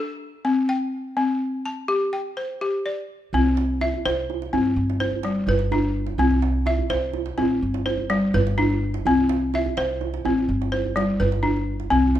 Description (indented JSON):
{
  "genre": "west african traditional, West African string and xylophone music",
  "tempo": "84 BPM (dotted quarters)",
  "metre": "12/8",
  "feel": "straight",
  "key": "unclear",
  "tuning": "A4 = 440 Hz",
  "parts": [
    { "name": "balafon", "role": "arpeggios", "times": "0.0-12.2 s", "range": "G3 to A5", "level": "-22 LUFS", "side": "left 2 dB", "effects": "none" },
    { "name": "upright bass", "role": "bass", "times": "3.3-12.2 s", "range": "G1 to G2", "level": "-25 LUFS", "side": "right 1 dB", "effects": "none" },
    { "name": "djembe", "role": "percussion", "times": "3.3-12.2 s", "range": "none", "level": "-29 LUFS", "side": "right 11 dB", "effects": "none" }
  ],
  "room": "moderate recital hall reverb, RT60 1.5 s",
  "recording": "minimal, uncompressed stereo recording",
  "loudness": "-20 LUFS",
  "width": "side -12 dB against mid",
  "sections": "0.0-3.3 A section; 3.3-12.2 B section",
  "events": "none",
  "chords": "0.5 C5; 3.3 C; 4.8 G; 6.2 C; 7.6 G; 9.1 C; 10.5 G",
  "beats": "| 0.45 1.17 1.89 2.61 | 3.33 4.04 4.76 5.48 | 6.20 6.91 7.63 8.34 | 9.06 9.77 10.49 11.20 | 11.92"
}